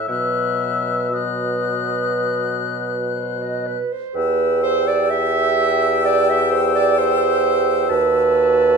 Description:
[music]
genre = classical, slow romantic movement for wind quintet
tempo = 58-67 BPM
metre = 4/4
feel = rubato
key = E minor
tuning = A4 = 438 Hz
[part]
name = silver concert flute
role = melody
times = 0.0-8.8 s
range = E6 to F#6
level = -24 LUFS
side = left 9 dB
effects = none
[part]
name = warm oboe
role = second line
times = 0.0-8.8 s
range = D#5 to A5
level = -26 LUFS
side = left 6 dB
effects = none
[part]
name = mellow bassoon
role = bass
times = 0.0-8.8 s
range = D#2 to B2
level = -23 LUFS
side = right 1 dB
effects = none
[part]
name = clear French horn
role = accompaniment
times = 0.1-8.8 s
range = F#3 to G4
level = -27 LUFS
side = left 4 dB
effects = none
[part]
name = dark clarinet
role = accompaniment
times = 0.1-8.8 s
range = B4 to E5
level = -19 LUFS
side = right 6 dB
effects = none
[sound]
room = wet stone room reverb, RT60 1.0 s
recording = dark, warm production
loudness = -16 LUFS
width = side -5 dB against mid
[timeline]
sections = 0.0-4.2 A section; 4.2-8.8 B section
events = none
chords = 0.1 B; 4.2 Em; 7.9 B7/D#

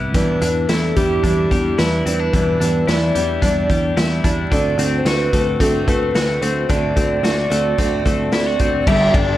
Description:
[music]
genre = jangly indie pop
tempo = 110 BPM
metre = 4/4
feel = straight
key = unclear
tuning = A4 = 436 Hz
[part]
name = twelve-string electric guitar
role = arpeggios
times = 0.0-9.4 s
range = E2 to F#4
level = -23 LUFS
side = left 3 dB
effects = wide subtle chorus
[part]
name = picked electric bass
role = bass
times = 0.0-9.4 s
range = G1 to E2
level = -21 LUFS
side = equal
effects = none
[part]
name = warbly nostalgic lead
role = melody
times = 0.1-9.4 s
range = G4 to E5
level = -20 LUFS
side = equal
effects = chorus, digital delay
[part]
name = picked steel-string acoustic guitar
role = accompaniment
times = 0.1-9.4 s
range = E2 to A4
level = -24 LUFS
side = right 3 dB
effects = none
[part]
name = raw garage drum kit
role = drums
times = 0.1-9.3 s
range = crash cymbal, hi-hat, kick drum, ride cymbal, snare drum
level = -21 LUFS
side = equal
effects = none
[sound]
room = light reverb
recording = vinyl crackle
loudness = -15 LUFS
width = side -14 dB against mid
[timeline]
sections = 0.0-8.9 A section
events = none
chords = 0.1 Em7; 4.5 D7; 8.9 Gadd9

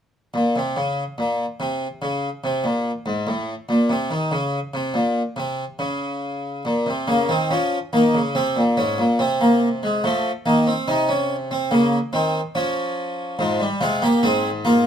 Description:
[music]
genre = classical, baroque-style 4-part fugue for harpsichord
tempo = 71 BPM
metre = 4/4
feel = straight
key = Bb minor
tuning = A4 = 445 Hz
[part]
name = harpsichord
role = solo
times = 0.3-14.9 s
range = Ab2 to Ab4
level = -19 LUFS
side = equal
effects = none
[sound]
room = light reverb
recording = none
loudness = -19 LUFS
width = side -8 dB against mid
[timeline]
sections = 0.0-6.7 A section; 6.7-14.9 B section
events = none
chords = 0.0 N.C.; 6.7 Bbm; 8.4 Abadd9; 10.0 F7; 11.7 Bbm/Db; 13.4 Fm/Ab

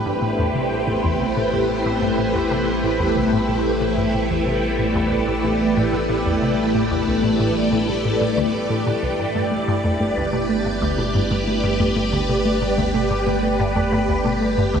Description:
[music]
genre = ambient, sequencer-driven space music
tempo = 92 BPM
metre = 4/4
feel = straight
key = A minor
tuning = A4 = 441 Hz
[part]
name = string machine, full ensemble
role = sustained chords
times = 0.0-14.8 s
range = A3 to D5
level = -20 LUFS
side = equal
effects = phaser, ensemble chorus, shimmer reverb
[part]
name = resonant blip pluck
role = riff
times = 0.0-14.8 s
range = C2 to C3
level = -25 LUFS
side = equal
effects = phaser, ensemble chorus, ping-pong delay
[part]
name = round analog bass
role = bass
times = 0.0-14.8 s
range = G1 to A1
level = -30 LUFS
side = equal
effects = none
[part]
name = soft round pluck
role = arpeggios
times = 9.4-14.8 s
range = A3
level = -24 LUFS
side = moving between left 2 dB and right 6 dB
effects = chorus, auto-pan, ping-pong delay
[sound]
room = wet huge ambient reverb, RT60 7.4 s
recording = dreamy mix soaked in reverb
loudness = -18 LUFS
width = side -7 dB against mid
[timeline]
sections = 0.0-14.8 A section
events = none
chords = 0.0 Am7; 9.2 G

